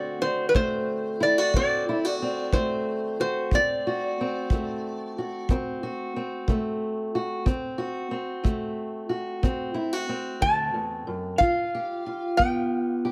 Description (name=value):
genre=acoustic country blues, solo or duo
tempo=61 BPM (dotted quarters)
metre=12/8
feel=straight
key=D mixolydian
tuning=A4 = 437 Hz
part: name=metal-body resonator slide guitar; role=melody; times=0.0-13.1 s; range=B4 to A5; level=-27 LUFS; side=equal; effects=none
part: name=fingerpicked steel-string acoustic guitar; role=accompaniment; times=0.0-13.1 s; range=D2 to G4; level=-30 LUFS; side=equal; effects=none
part: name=kick drum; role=drums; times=0.5-12.5 s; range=none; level=-28 LUFS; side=equal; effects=none
room=light reverb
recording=none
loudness=-27 LUFS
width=mono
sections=0.0-13.1 A section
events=none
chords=0.0 D7; 11.4 G7